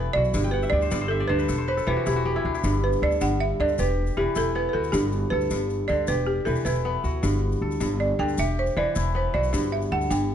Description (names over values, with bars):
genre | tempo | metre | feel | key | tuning
west african traditional, West African string and xylophone music | 104 BPM (dotted quarters) | 12/8 | straight | G major | A4 = 444 Hz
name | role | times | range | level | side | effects
balafon | melody | 0.0-10.3 s | G4 to G5 | -26 LUFS | right 2 dB | none
kora | arpeggios | 0.0-10.3 s | G2 to G5 | -27 LUFS | left 1 dB | none
upright bass | bass | 0.0-10.3 s | E1 to D2 | -26 LUFS | equal | none
tube shaker | percussion | 0.2-10.2 s | none | -41 LUFS | left 6 dB | none
room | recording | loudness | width
light reverb | dark, warm production, nothing above 10.7 kHz | -22 LUFS | side -9 dB against mid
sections
0.0-10.3 A section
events
balafon solo 0.0-10.3; kora fill 0.4-2.6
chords
0.3 G5; 1.5 Em; 2.6 G5; 3.8 Em; 4.9 G; 6.1 Em; 7.2 G5; 8.4 Em; 9.5 G5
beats
| 0.34 0.92 1.49 2.06 | 2.64 3.21 3.79 4.36 | 4.93 5.51 6.08 6.66 | 7.23 7.81 8.38 8.95 | 9.53 10.10